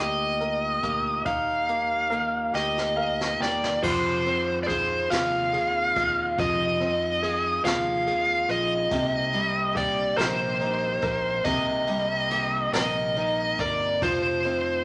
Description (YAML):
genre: six-eight pop ballad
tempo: 47 BPM (dotted quarters)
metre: 6/8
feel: straight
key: unclear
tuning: A4 = 440 Hz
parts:
  - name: smooth overdriven lead guitar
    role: melody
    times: 0.0-14.8 s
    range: C5 to F5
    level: -27 LUFS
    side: equal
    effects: none
  - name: clear baby grand piano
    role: accompaniment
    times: 0.0-14.8 s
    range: C3 to G5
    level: -33 LUFS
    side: equal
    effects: none
  - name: twelve-string electric guitar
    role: arpeggios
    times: 0.0-14.8 s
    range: F2 to G4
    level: -39 LUFS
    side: equal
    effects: none
  - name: fretless electric bass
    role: bass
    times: 0.0-14.8 s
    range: F1 to F2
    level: -38 LUFS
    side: equal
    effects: none
  - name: jazz brush drum kit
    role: drums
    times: 0.4-14.6 s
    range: crash cymbal, hi-hat, kick drum, ride cymbal, snare drum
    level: -36 LUFS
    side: equal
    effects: none
room: moderate studio reverb, RT60 0.7 s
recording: vinyl crackle, nothing above 10.9 kHz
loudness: -25 LUFS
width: mono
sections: 0.0-3.8 A section; 3.8-14.8 B section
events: drum fill 2.5-3.8; grand piano fill 2.5-3.8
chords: 0.0 Ebadd9; 3.8 Fm7; 8.9 Cm7; 14.0 F7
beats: | 1.26 2.54 | 3.83 5.11 | 6.39 7.65 | 8.92 10.18 | 11.45 12.73 | 14.02